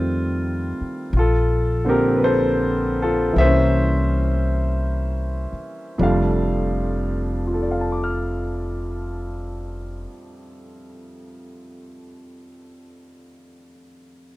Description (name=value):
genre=jazz ballad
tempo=41-60 BPM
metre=4/4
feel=swing 67% on 8ths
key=F major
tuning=A4 = 439 Hz
part: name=clear concert grand piano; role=accompaniment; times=0.0-14.3 s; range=F2 to F6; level=-22 LUFS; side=equal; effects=none
part: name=upright bass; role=bass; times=0.0-10.0 s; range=F1 to F2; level=-23 LUFS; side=equal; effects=none
room=light reverb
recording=dry, close 1970s-style studio recording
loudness=-19 LUFS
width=side -18 dB against mid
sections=0.0-1.1 A section; 1.1-6.0 B section; 6.0-11.8 C section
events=slowing down 0.0-6.0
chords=0.0 F7; 1.1 Bbmaj7; 3.4 C7b9; 6.0 F69